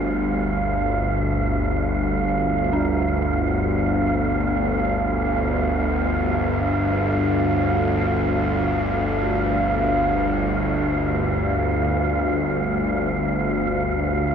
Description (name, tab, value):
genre	dark ambient drone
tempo	free time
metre	none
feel	none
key	unclear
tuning	A4 = 439 Hz
part	bowed-like drone	drone	0.0-14.3 s	G1 to D2	-20 LUFS	equal	built-in reverb
part	wind-like tuned noise texture	texture	0.0-14.3 s	F5	-26 LUFS	right 3 dB	built-in reverb
part	dark detuned synth bell	arpeggios	2.7-14.3 s	D4	-32 LUFS	right 1 dB	none
room	wet huge ambient reverb, RT60 8.2 s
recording	worn, warbling old tape, cassette tape, warbly pitch drift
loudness	-19 LUFS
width	side -7 dB against mid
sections	0.0-14.3 A section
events	none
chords	0.0 G5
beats	free time